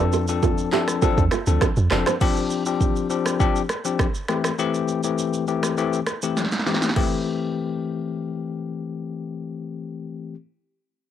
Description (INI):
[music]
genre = afrobeats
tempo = 101 BPM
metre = 4/4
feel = straight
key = A minor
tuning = A4 = 440 Hz
[part]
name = bell-like tine electric piano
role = accompaniment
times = 0.0-10.3 s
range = E3 to A4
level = -24 LUFS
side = left 7 dB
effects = medium stereo tremolo
[part]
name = nylon-string guitar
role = riff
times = 0.0-2.2 s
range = E4 to D5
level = -26 LUFS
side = right 10 dB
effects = tape echo
[part]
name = deep log drum bass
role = bass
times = 0.0-2.0 s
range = F1 to F2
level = -22 LUFS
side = right 2 dB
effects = none
[part]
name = deep house drum kit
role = drums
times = 0.1-7.1 s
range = crash cymbal, finger snaps, handclaps, kick drum, rim click, shaker, snare drum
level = -24 LUFS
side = right 2 dB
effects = cassette tape
[sound]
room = little or no reverb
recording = home recording on cassette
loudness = -20 LUFS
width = side -10 dB against mid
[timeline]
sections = 0.0-2.2 A section; 2.2-7.0 B section; 7.0-9.3 C section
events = drum fill 6.4-7.0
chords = 0.0 F6; 2.2 G7sus4; 4.3 Am7